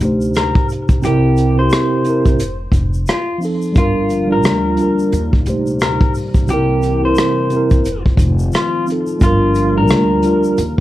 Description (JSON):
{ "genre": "lo-fi hip hop", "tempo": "88 BPM", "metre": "4/4", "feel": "swing 60% on 16ths", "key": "G minor", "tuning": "A4 = 436 Hz", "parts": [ { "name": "mellow tine electric piano", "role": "accompaniment", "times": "0.0-10.6 s", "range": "C3 to C5", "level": "-16 LUFS", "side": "right 1 dB", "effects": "slow stereo tremolo, plate reverb" }, { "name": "upright bass", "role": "bass", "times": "0.0-10.8 s", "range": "F1 to Eb2", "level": "-18 LUFS", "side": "equal", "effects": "none" }, { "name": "vintage brush drum kit", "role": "drums", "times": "0.0-10.8 s", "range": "hi-hat, kick drum, rim click", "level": "-16 LUFS", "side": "equal", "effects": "none" }, { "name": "tube shaker", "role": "percussion", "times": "0.0-10.8 s", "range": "none", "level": "-40 LUFS", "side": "left 5 dB", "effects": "none" }, { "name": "electric guitar through a small old amp", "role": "melody", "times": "0.4-10.7 s", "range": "F4 to C5", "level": "-22 LUFS", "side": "left 2 dB", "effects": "analog delay, plate reverb" }, { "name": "dark analog pad", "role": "sustained chords", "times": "3.8-10.8 s", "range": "Bb2 to F4", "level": "-24 LUFS", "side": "left 1 dB", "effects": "wide subtle chorus" } ], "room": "moderate studio reverb, RT60 0.6 s", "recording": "cassette tape", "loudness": "-12 LUFS", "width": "side -15 dB against mid", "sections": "0.0-10.8 A section", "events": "none", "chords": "0.0 Eb6; 1.0 C7; 2.4 F7; 3.8 Gm7; 5.1 Eb6; 6.5 C7; 7.8 F7; 9.2 Gm7", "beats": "0.35 | 1.03 1.71 2.39 3.07 | 3.76 4.44 5.12 5.80 | 6.48 7.17 7.85 8.53 | 9.21 9.89 10.57" }